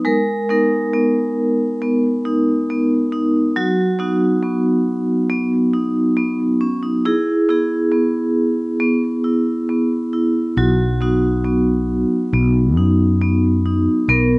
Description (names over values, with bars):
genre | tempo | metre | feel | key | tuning
acoustic folk-pop ballad | 68 BPM | 4/4 | straight | B major | A4 = 440 Hz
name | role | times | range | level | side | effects
vibraphone with hard mallets | arpeggios | 0.0-14.4 s | F#3 to A#4 | -16 LUFS | equal | none
mellow fretless electric bass | bass | 10.6-14.4 s | B1 to F#2 | -17 LUFS | left 1 dB | none
room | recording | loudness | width
light reverb | recorded outdoors, with no room sound, nothing above 10.7 kHz | -15 LUFS | side -25 dB against mid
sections
0.0-14.4 A section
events
none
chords
0.1 G#madd9; 3.6 B; 7.1 E; 10.6 B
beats
| 0.05 0.93 1.81 2.69 | 3.56 4.43 5.31 6.18 | 7.05 7.93 8.81 9.69 | 10.57 11.46 12.34 13.22 | 14.10